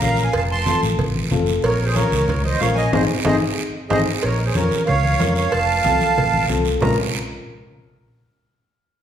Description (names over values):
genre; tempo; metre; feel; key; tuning
latin, cumbia; 185 BPM; 4/4; straight; Bb minor; A4 = 440 Hz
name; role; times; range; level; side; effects
accordion; melody; 0.0-7.0 s; Ab4 to C6; -21 LUFS; right 3 dB; light tremolo tuning
dark upright piano; accompaniment; 0.0-7.0 s; C4 to Bb4; -24 LUFS; left 4 dB; none
fingered electric bass; bass; 0.0-7.0 s; F1 to F2; -23 LUFS; equal; none
congas; percussion; 0.0-6.9 s; none; -26 LUFS; equal; none
guiro; percussion; 0.0-6.9 s; none; -30 LUFS; right 6 dB; none
cowbell and timbales; percussion; 0.3-6.9 s; none; -28 LUFS; right 2 dB; none
room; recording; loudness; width
wet recital hall reverb, RT60 1.3 s; recorded in a church or concert hall; -16 LUFS; side -9 dB against mid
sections
0.0-4.2 A section; 4.2-6.8 B section; 6.8-8.1 C section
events
band accent 2.9-4.2; drum fill 3.4-4.2; upright piano fill 3.6-4.2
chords
0.3 F; 1.6 Bbm; 2.9 Ab; 4.2 Bbm; 5.5 F; 6.8 Bbm